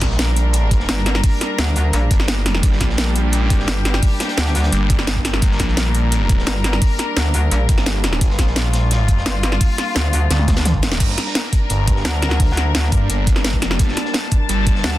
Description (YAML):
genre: dark technical drum and bass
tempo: 172 BPM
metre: 4/4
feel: straight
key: G minor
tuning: A4 = 440 Hz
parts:
  - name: warm studio string section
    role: sustained chords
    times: 0.0-15.0 s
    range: G3 to A5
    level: -24 LUFS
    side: left 1 dB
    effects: sidechain pumping
  - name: phased detuned saw bass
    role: bass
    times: 0.0-14.8 s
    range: F1 to G2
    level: -18 LUFS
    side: equal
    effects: phaser, tube saturation, sidechain pumping
  - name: crunchy breakbeat drum kit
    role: drums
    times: 0.0-14.9 s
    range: hi-hat, snare drum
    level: -32 LUFS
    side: equal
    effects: none
  - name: drum and bass drum kit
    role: drums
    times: 0.0-14.9 s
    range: crash cymbal, hi-hat, snare drum, toms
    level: -22 LUFS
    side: equal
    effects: none
  - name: electronic kick drum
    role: drums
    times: 0.0-14.7 s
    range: none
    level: -17 LUFS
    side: equal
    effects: none
  - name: metallic wobble bass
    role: bass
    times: 0.9-15.0 s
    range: G1 to D2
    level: -18 LUFS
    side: equal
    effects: chorus
  - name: deep dark ambient pad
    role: texture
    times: 12.5-15.0 s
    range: G4 to D5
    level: -32 LUFS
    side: left 3 dB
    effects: chorus, built-in reverb, sidechain pumping
room: digital ambience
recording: dense, heavily limited modern master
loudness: -15 LUFS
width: side -15 dB against mid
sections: 0.0-11.0 A section; 11.0-15.0 A section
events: drop 0.0-11.0, 11.0-15.0; drum fill 10.3-11.0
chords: 0.0 Gm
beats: 0.19 0.54 0.89 | 1.24 1.58 1.93 2.28 | 2.63 2.98 3.33 3.68 | 4.03 4.38 4.72 5.07 | 5.42 5.77 6.12 6.47 | 6.82 7.17 7.51 7.86 | 8.21 8.56 8.91 9.26 | 9.61 9.96 10.31 10.65 | 11.00 11.35 11.70 12.05 | 12.40 12.75 13.10 13.45 | 13.79 14.14 14.49 14.84